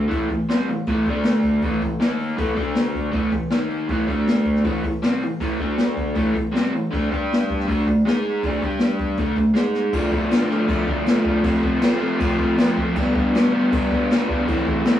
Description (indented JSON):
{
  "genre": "garage rock duo or trio",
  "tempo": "159 BPM",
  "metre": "4/4",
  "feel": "straight",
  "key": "unclear",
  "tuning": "A4 = 439 Hz",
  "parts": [
    { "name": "crunchy overdriven guitar", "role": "riff", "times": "0.0-15.0 s", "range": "F2 to G#4", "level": "-20 LUFS", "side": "equal", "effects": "none" },
    { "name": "jazz brush drum kit", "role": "drums", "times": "0.1-14.9 s", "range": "crash cymbal, hi-hat, kick drum, snare drum", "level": "-23 LUFS", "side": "left 1 dB", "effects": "none" }
  ],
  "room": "moderate small room reverb, RT60 0.6 s",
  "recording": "rough rehearsal-room recording, warm saturation, studio ambience",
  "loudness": "-18 LUFS",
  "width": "side -11 dB against mid",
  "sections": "0.0-9.9 A section; 9.9-15.0 B section",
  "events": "drum fill 9.8",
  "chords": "0.1 Am; 1.1 D5; 1.6 A5; 2.0 D#5; 2.4 A5; 2.6 D5; 3.1 A5; 3.5 D#5; 3.9 A5; 4.1 D5; 4.7 Am; 5.6 D5; 6.2 Am; 6.9 D5; 7.1 G5; 7.7 D5; 8.1 G#5; 8.4 D5; 8.6 G5; 9.2 D5; 9.6 G#5; 9.9 Dm; 11.4 F; 13.0 G; 14.5 Am"
}